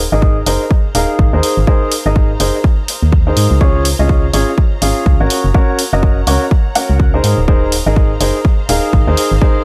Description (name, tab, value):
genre	piano house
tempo	124 BPM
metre	4/4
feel	swing 59% on 16ths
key	Ab mixolydian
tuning	A4 = 437 Hz
part	organ-like FM bass	bass	0.0-9.4 s	Eb1 to Ab2	-17 LUFS	equal	sidechain pumping
part	clear symphonic string section	texture	0.0-9.6 s	C5 to Bb5	-36 LUFS	equal	sidechain pumping
part	clear upright piano	riff	0.1-9.6 s	Db4 to Gb5	-19 LUFS	equal	vintage 12-bit sampler grit, sidechain pumping, low-pass filter, dub echo
part	electronic kick drum	drums	0.2-9.5 s	none	-14 LUFS	equal	none
part	electronic hi-hat	drums	0.5-9.3 s	none	-22 LUFS	equal	none
room	little or no reverb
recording	echo-heavy mix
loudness	-13 LUFS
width	mono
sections	0.0-9.6 A section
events	fade-in on string section 0.0-9.6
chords	0.0 Abadd9; 3.6 Db; 5.3 Gb; 7.2 Abadd9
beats	0.22 0.71 1.19 | 1.67 2.16 2.64 3.13 | 3.61 4.09 4.58 5.06 | 5.54 6.03 6.51 7.00 | 7.48 7.96 8.45 8.93 | 9.42